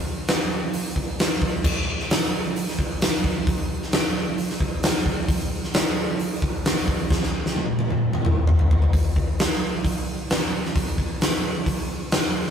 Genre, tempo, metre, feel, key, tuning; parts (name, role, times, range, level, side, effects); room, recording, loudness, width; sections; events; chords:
rock; 132 BPM; 4/4; straight
huge arena drum kit; drums; 0.3-12.5 s; crash cymbal, hi-hat, kick drum, snare drum, toms; -20 LUFS; equal
light reverb; rough rehearsal-room recording, warm saturation; -21 LUFS; side -8 dB against mid
0.0-8.9 A section; 8.9-12.5 B section
drum fill 7.1-8.9